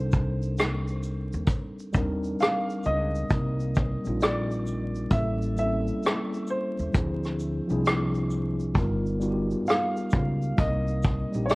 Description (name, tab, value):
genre	lo-fi hip hop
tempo	66 BPM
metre	4/4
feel	swing 66% on 16ths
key	C dorian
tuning	A4 = 441 Hz
part	warm upright piano	melody	0.0-11.6 s	C5 to F5	-32 LUFS	equal	low-pass filter, tape echo
part	mellow tine electric piano	accompaniment	0.0-11.6 s	F3 to Bb4	-30 LUFS	equal	fast stereo tremolo, low-pass filter
part	upright bass	bass	0.0-11.6 s	G1 to Eb2	-29 LUFS	equal	transformer saturation
part	vintage brush drum kit	drums	0.1-11.6 s	hi-hat, kick drum, rim click, shaker	-26 LUFS	equal	none
part	tube shaker	percussion	0.1-11.6 s	none	-56 LUFS	right 3 dB	none
room	light reverb, small room reverb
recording	worn, warbling old tape, cassette tape, vinyl crackle, warbly pitch drift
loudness	-24 LUFS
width	side -24 dB against mid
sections	0.0-3.3 A section; 3.3-11.6 B section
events	none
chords	0.0 Cm9; 5.1 A7b9; 6.9 Dm7b5; 8.8 G7alt; 10.6 Cm9